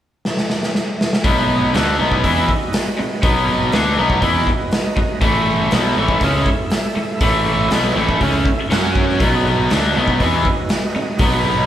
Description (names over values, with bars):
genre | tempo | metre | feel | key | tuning
blues rock power trio and southern rock | 121 BPM | 4/4 | straight | B mixolydian | A4 = 440 Hz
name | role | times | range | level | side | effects
raw garage drum kit | drums | 0.3-11.3 s | hi-hat, kick drum, snare drum | -19 LUFS | equal | none
overdriven tonewheel organ | sustained chords | 1.2-11.7 s | A3 to F#5 | -26 LUFS | right 4 dB | slow rotary speaker, chorus vibrato
overdriven electric guitar | riff | 1.2-11.7 s | A2 to F#4 | -17 LUFS | equal | spring reverb
fuzz fingered electric bass | bass | 1.2-11.7 s | A1 to F#2 | -23 LUFS | equal | overdrive
room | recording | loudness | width
moderate large studio reverb, RT60 1.1 s | band playing live in one room | -14 LUFS | side -11 dB against mid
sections
0.0-1.2 A section; 1.2-11.7 B section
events
drum fill 0.3-1.2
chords
0.0 N.C.; 1.2 B; 5.2 A5; 8.7 F#5; 9.2 B